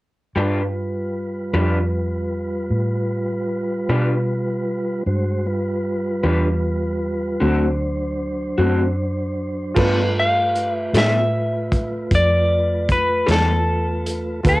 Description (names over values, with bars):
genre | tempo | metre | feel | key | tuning
slow blues | 51 BPM (dotted quarters) | 12/8 | straight | G mixolydian | A4 = 441 Hz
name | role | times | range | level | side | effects
electric guitar through a small old amp | accompaniment | 0.4-13.5 s | D3 to B4 | -21 LUFS | left 1 dB | harmonic tremolo, cassette tape
mellow tonewheel organ | sustained chords | 0.4-14.6 s | F#3 to C5 | -25 LUFS | right 1 dB | slow rotary speaker, cassette tape
vintage muted fingered electric bass | bass | 0.4-14.6 s | D2 to B2 | -23 LUFS | equal | none
clear upright piano | accompaniment | 9.7-14.6 s | F4 to B4 | -24 LUFS | right 3 dB | cassette tape
crunchy breakbeat drum kit | drums | 9.8-14.6 s | crash cymbal, hi-hat, kick drum, snare drum | -22 LUFS | equal | cassette tape
electric guitar at the edge of break-up | melody | 10.2-14.6 s | A4 to F5 | -20 LUFS | left 1 dB | cassette tape
room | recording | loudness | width
light reverb | home recording on cassette | -18 LUFS | side -19 dB against mid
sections
0.4-9.8 A section; 9.8-14.6 B section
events
none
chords
0.4 G7; 7.4 D7; 9.8 G9